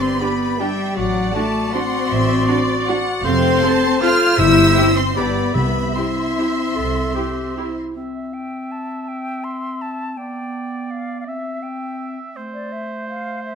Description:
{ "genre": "classical", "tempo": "140-178 BPM", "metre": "3/4", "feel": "rubato", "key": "C major from 3.3 s", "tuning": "A4 = 438 Hz", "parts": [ { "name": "rich studio violin section", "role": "melody", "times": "0.0-7.8 s", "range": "F#5 to F6", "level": "-25 LUFS", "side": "left 1 dB", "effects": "none" }, { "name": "concert flute", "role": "second line", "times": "0.0-13.6 s", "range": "D5 to F6", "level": "-28 LUFS", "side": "left 1 dB", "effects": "none" }, { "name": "dark clarinet", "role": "second line", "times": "0.0-13.6 s", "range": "A3 to A4", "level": "-27 LUFS", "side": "left 1 dB", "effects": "none" }, { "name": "rich studio violin section", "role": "second line", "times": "0.0-7.8 s", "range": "B4 to A5", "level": "-28 LUFS", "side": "left 1 dB", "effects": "none" }, { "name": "warm oboe", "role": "second line", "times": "0.0-13.6 s", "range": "C5 to E5", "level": "-29 LUFS", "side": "right 2 dB", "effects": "none" }, { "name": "mellow French horn section", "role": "sustained chords", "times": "0.0-7.8 s", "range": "F#3 to F4", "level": "-20 LUFS", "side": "left 6 dB", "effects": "none" }, { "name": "clear studio cello section", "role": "bass", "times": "0.0-7.7 s", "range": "F#3 to F4", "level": "-25 LUFS", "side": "right 4 dB", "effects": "none" }, { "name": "rich studio double bass section", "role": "bass", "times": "0.0-7.1 s", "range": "F1 to C2", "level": "-24 LUFS", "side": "right 5 dB", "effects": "none" }, { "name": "rich studio viola section", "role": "accompaniment", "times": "0.2-7.7 s", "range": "C4 to A4", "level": "-27 LUFS", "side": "right 2 dB", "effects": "none" }, { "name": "timpani", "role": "percussion", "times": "4.4-6.1 s", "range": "G2 to C3", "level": "-23 LUFS", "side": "equal", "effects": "none" } ], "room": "moderate concert hall reverb, RT60 1.9 s", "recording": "close, detailed microphones", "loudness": "-17 LUFS", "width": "side -6 dB against mid", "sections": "0.0-8.0 A section; 8.0-13.6 B section", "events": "none", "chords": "0.0 G; 1.0 D7/A; 3.3 F; 4.4 C/G; 5.2 G; 5.6 C; 10.2 G/B; 11.3 C; 12.4 Am" }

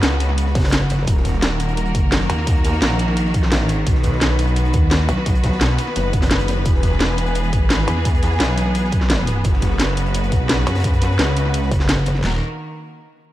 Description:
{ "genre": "dark technical drum and bass", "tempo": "172 BPM", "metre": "4/4", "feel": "straight", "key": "Eb phrygian", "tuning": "A4 = 440 Hz", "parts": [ { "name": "clear studio string section", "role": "sustained chords", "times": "0.0-12.4 s", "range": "Db3 to B4", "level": "-24 LUFS", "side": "equal", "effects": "sidechain pumping" }, { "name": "phased detuned saw bass", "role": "bass", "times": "0.0-12.4 s", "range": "Eb1 to D#2", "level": "-19 LUFS", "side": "equal", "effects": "phaser, overdrive" }, { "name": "crunchy breakbeat drum kit", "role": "drums", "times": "0.0-12.2 s", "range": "hi-hat, snare drum", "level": "-33 LUFS", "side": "equal", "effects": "none" }, { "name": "drum and bass drum kit", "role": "drums", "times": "0.0-12.2 s", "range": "hi-hat, snare drum", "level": "-23 LUFS", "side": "equal", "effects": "none" }, { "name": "metallic wobble bass", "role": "bass", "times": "0.6-5.6, 7.9-12.2 s", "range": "Gb1 to Gb2", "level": "-19 LUFS", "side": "equal", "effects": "distortion, chorus" }, { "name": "dubstep drum kit", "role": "drums", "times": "0.6-12.3 s", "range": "handclaps, kick drum, snare drum", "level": "-19 LUFS", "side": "equal", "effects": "none" } ], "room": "light reverb, small room ambience", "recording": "none", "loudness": "-16 LUFS", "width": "side -14 dB against mid", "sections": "0.0-12.2 A section; 12.2-13.3 B section", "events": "drop 0.0-12.2", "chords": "0.0 Gbsus4; 1.1 Ebm; 3.9 B; 6.7 E; 9.4 Gbsus4; 12.2 Ebm" }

